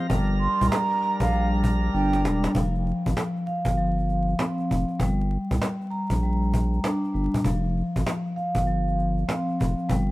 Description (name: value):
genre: hip hop, boom-bap hip-hop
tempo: 98 BPM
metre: 4/4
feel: swing 62% on 16ths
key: unclear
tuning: A4 = 440 Hz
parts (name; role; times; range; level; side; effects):
- vibraphone with soft mallets; accompaniment; 0.0-10.1 s; F3 to Bb5; -26 LUFS; left 1 dB; cassette tape, high-pass filter, low-pass filter
- overdriven tonewheel organ; sustained chords; 0.0-2.5 s; G3 to Bb5; -34 LUFS; right 2 dB; slow rotary speaker, high-pass filter, low-pass filter
- saturated sub bass; bass; 0.1-10.1 s; E1 to C2; -25 LUFS; equal; none
- cajon; drums; 0.1-10.1 s; none; -28 LUFS; equal; none
- breathy mellow concert flute; melody; 0.4-2.2 s; F5 to C6; -27 LUFS; right 3 dB; high-pass filter, low-pass filter, digital delay
room: studio ambience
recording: rough home demo mix, vinyl crackle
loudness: -22 LUFS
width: side -18 dB against mid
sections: 0.0-2.5 A section; 2.5-10.1 B section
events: drum fill 1.9-2.5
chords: 0.1 Gm; 2.5 Fsus2; 5.0 Gm; 7.4 Fsus2